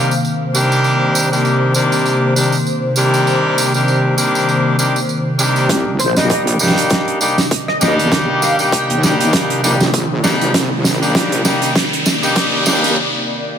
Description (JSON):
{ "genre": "glitch hop", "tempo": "99 BPM", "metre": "4/4", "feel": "swing 57% on 16ths", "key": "C minor", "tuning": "A4 = 439 Hz", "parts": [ { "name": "sync lead", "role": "melody", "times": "0.0-0.2, 6.0-9.2 s", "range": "C5 to G5", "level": "-23 LUFS", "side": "left 1 dB", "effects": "ensemble chorus, dub echo" }, { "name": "warm analog pad", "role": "sustained chords", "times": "0.0-13.6 s", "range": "C3 to D5", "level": "-19 LUFS", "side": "equal", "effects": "chorus, sidechain pumping" }, { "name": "brilliant horn section", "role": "stabs", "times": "0.0-12.9 s", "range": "C3 to G4", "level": "-17 LUFS", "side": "left 1 dB", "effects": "sidechain pumping, low-pass filter, dub echo" }, { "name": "tambourine", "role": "percussion", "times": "0.1-12.9 s", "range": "none", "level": "-22 LUFS", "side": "right 4 dB", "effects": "none" }, { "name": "wobble bass", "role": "bass", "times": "5.7-13.0 s", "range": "Bb1 to Eb2", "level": "-19 LUFS", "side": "equal", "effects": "chorus, high-pass filter" }, { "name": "big rock drum kit", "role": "drums", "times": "5.7-12.9 s", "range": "hi-hat, rim click, snare drum", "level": "-18 LUFS", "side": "right 2 dB", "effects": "none" }, { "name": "electronic kick drum", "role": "drums", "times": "5.7-12.5 s", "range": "none", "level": "-18 LUFS", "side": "left 1 dB", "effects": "high-pass filter on kick" }, { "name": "riser", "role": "sound effects", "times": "7.6-13.0 s", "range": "none", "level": "-22 LUFS", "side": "left 1 dB", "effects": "none" } ], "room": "light reverb, studio reverb", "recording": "high-pass filter", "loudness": "-12 LUFS", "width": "side -8 dB against mid", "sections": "0.0-5.7 A section; 5.7-13.6 B section", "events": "build-up 5.7-13.6; drum fill 5.7-13.0; filter sweep on analog synth pad 5.7-13.6; filter sweep 5.7-13.6; riser 7.6-13.0; break 13.0-13.6", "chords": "0.0 Cm9" }